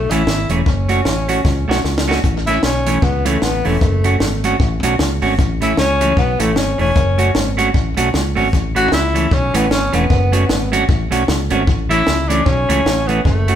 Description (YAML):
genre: ska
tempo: 153 BPM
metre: 4/4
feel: swing 58% on 8ths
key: A major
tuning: A4 = 440 Hz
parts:
  - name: breathy tenor saxophone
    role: melody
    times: 0.0-13.6 s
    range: A3 to F#4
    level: -19 LUFS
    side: left 1 dB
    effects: none
  - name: fingered electric bass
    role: bass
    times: 0.0-13.6 s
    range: E1 to C#2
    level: -19 LUFS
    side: equal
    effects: none
  - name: clean electric guitar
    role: accompaniment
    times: 0.1-13.6 s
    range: E3 to F#4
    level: -19 LUFS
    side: right 3 dB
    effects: none
  - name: compact cocktail drum kit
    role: drums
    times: 0.1-13.6 s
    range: hi-hat, kick drum, snare drum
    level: -18 LUFS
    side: equal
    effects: tape echo
room: moderate large studio reverb, RT60 0.9 s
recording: band playing live in one room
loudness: -13 LUFS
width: side -10 dB against mid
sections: 0.0-13.6 A section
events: drum fill 1.4-2.2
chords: 0.0 A; 0.7 F#m; 2.2 A; 3.8 F#m; 5.4 A; 7.0 F#m; 8.5 A; 10.1 F#m; 11.7 A